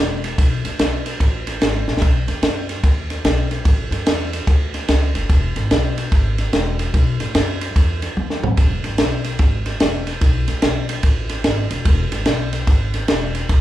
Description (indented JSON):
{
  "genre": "electric blues shuffle",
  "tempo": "146 BPM",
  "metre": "4/4",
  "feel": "swing 64% on 8ths",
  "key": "E major",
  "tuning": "A4 = 442 Hz",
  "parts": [
    { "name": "upright bass", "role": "bass", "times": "0.0-13.6 s", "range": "E1 to A2", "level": "-22 LUFS", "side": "equal", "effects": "none" },
    { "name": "compact cocktail drum kit", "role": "drums", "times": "0.2-13.6 s", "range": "kick drum, ride cymbal, snare drum, toms", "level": "-17 LUFS", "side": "equal", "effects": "none" }
  ],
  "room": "light reverb",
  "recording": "band playing live in one room",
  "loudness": "-16 LUFS",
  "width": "side -14 dB against mid",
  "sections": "0.0-8.6 A section; 8.6-13.6 B section",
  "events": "drum fill 1.8, 8.2-8.6",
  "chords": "none"
}